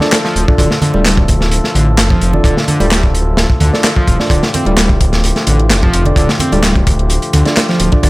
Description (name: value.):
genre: breakbeat, breaks.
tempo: 129 BPM.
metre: 4/4.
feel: straight.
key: D minor.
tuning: A4 = 440 Hz.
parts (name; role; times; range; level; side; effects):
percussive tonewheel organ; sustained chords; 0.0-8.1 s; D3 to A4; -21 LUFS; left 1 dB; overdrive, sidechain pumping.
mellow tine electric piano; stabs; 0.0-8.1 s; D4 to D5; -20 LUFS; right 2 dB; dub echo.
crunchy breakbeat drum kit; drums; 0.0-8.1 s; hi-hat, kick drum, snare drum; -13 LUFS; equal; none.
garage drum kit; drums; 0.1-8.1 s; handclaps, hi-hat; -19 LUFS; left 1 dB; none.
overdriven synth lead; riff; 0.2-8.1 s; D3 to C4; -18 LUFS; equal; distortion, tube saturation, dub echo.
dark detuned saw bass; bass; 0.4-8.1 s; D1 to D2; -14 LUFS; equal; tube saturation.
congas; percussion; 0.8-7.4 s; none; -20 LUFS; right 2 dB; none.
room: studio ambience.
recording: none.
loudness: -10 LUFS.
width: side -20 dB against mid.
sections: 0.0-8.1 A section.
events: none.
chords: 0.0 Dm.